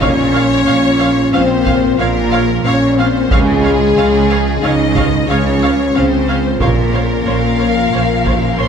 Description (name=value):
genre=cinematic, hybrid orchestral and electronic film score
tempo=91 BPM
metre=5/4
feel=straight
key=Bb minor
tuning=A4 = 440 Hz
part: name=warm symphonic violin section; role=melody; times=0.0-8.7 s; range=F5 to C6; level=-23 LUFS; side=left 3 dB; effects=none
part: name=rich symphonic violin section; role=second line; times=0.0-8.7 s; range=Ab4 to Eb5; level=-21 LUFS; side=left 3 dB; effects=none
part: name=rich symphonic viola section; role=accompaniment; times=0.0-8.7 s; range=Db4 to F5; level=-23 LUFS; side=right 4 dB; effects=none
part: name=dark French horn section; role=sustained chords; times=0.0-8.7 s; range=Ab3 to Eb4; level=-16 LUFS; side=left 3 dB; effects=none
part: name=warbly tape-like pad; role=sustained chords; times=0.0-8.7 s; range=Db3 to Bb4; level=-23 LUFS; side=right 2 dB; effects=chorus, built-in reverb
part: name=clear symphonic cello section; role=bass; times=0.0-8.7 s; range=Bb2 to Db3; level=-20 LUFS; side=right 4 dB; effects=none
part: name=rich symphonic double bass section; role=bass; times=0.0-8.7 s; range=Bb1 to Db2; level=-18 LUFS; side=right 3 dB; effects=none
part: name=taiko ensemble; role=drums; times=0.0-8.7 s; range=none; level=-20 LUFS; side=right 1 dB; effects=none
part: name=reverse cymbal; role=sound effects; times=8.4-8.7 s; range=none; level=-39 LUFS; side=equal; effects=none
room=wet scoring stage reverb, RT60 1.8 s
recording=none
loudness=-11 LUFS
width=side -7 dB against mid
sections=0.0-8.7 A section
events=none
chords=0.0 Bbm; 3.3 Db; 6.6 Bbmadd9